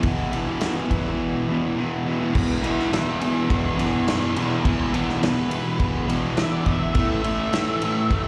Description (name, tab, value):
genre	garage rock duo or trio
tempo	104 BPM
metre	4/4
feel	straight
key	E mixolydian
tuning	A4 = 440 Hz
part	combo organ	sustained chords	0.0-8.3 s	E4 to C#5	-40 LUFS	equal	none
part	fuzz guitar	riff	0.0-8.3 s	E2 to A3	-25 LUFS	equal	distortion, slapback echo
part	vintage drum kit	drums	0.0-8.2 s	crash cymbal, kick drum, ride cymbal, snare drum	-28 LUFS	equal	none
part	octave-fuzz lead guitar	melody	2.6-8.3 s	G#4 to E5	-31 LUFS	equal	distortion, slapback echo
room	moderate plate reverb, RT60 1.9 s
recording	live gig heard through the venue's PA, recital hall reverb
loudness	-23 LUFS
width	mono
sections	0.0-2.3 A section; 2.3-8.3 B section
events	none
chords	0.0 E; 7.0 A